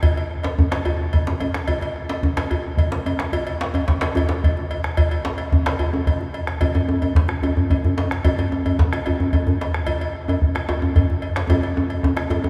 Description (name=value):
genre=west african traditional, West African drum ensemble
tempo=147 BPM (dotted quarters)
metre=12/8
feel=straight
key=none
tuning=none
part: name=bombo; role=percussion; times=0.0-12.3 s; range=none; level=-24 LUFS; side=equal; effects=none
part: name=cowbell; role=percussion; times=0.0-12.4 s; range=none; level=-32 LUFS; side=equal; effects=none
part: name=djembe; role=percussion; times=0.0-12.4 s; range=none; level=-30 LUFS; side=equal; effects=none
part: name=djembe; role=percussion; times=0.4-12.5 s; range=none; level=-25 LUFS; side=equal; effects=none
room=wet church reverb, RT60 3.4 s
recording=recorded in a church or concert hall, small room ambience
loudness=-21 LUFS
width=mono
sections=0.0-12.5 A section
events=drum fill 11.5-12.5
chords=none